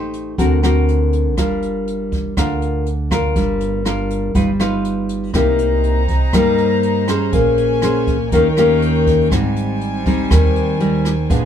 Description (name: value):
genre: bossa nova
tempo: 121 BPM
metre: 4/4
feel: straight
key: G minor, C minor from 5.3 s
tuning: A4 = 440 Hz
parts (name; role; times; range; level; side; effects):
- nylon-string guitar; accompaniment; 0.0-11.5 s; Ab2 to C5; -16 LUFS; left 1 dB; none
- upright bass; bass; 0.0-11.5 s; G1 to G2; -20 LUFS; right 1 dB; none
- jazz brush drum kit; drums; 0.1-11.4 s; hi-hat, kick drum, rim click; -22 LUFS; right 1 dB; none
- warm chamber violin section; sustained chords; 5.3-11.5 s; G3 to Bb5; -26 LUFS; right 2 dB; none
room: light reverb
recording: band playing live in one room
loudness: -14 LUFS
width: side -9 dB against mid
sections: 0.0-5.3 A section; 5.3-11.5 B section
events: none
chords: 0.4 D7b13; 1.4 Gm7; 4.3 Gaug7; 5.3 Cm7; 7.3 Bbm9; 8.3 Eb7; 9.3 Abmaj7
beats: 0.38 0.87 | 1.37 1.87 2.36 2.86 | 3.36 3.85 4.35 4.84 | 5.34 5.84 6.33 6.83 | 7.33 7.82 8.32 8.81 | 9.31 9.81 10.30 10.80 | 11.30